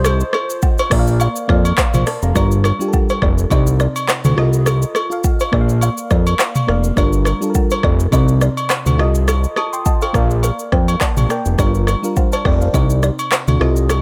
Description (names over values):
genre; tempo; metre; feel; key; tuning
afrobeats; 104 BPM; 4/4; swing 55% on 16ths; unclear; A4 = 441 Hz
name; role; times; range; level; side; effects
glassy wavetable pluck; melody; 0.0-0.6 s; C5; -28 LUFS; equal; chorus, tape echo
mellow FM electric piano; accompaniment; 0.0-14.0 s; C3 to Eb6; -24 LUFS; equal; chorus, phaser
fat analog bass; bass; 0.0-14.0 s; F1 to F2; -18 LUFS; equal; none
afro-pop drum kit; drums; 0.0-14.0 s; handclaps, hi-hat, kick drum, rim click, shaker, toms; -20 LUFS; equal; none
buzzing kalimba; riff; 0.1-14.0 s; G4 to F5; -27 LUFS; equal; tape echo
agogo bells and woodblock; percussion; 0.1-14.0 s; none; -28 LUFS; equal; none
room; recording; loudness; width
little or no reverb; none; -16 LUFS; mono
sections
0.0-2.4 A section; 2.4-14.0 B section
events
FM electric piano fill 9.9-11.6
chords
0.0 F7/C; 0.9 Bb; 2.4 Gm7; 3.5 Cmadd9; 4.4 F7/C; 5.5 Bb; 7.0 Gm7; 8.1 Cmadd9; 9.0 F7/C; 10.1 Gm7; 12.7 Cmadd9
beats
| 0.05 0.63 1.20 1.78 | 2.36 2.93 3.51 4.09 | 4.67 5.24 5.82 6.40 | 6.97 7.55 8.13 8.70 | 9.28 9.86 10.43 11.01 | 11.59 12.16 12.74 13.32 | 13.90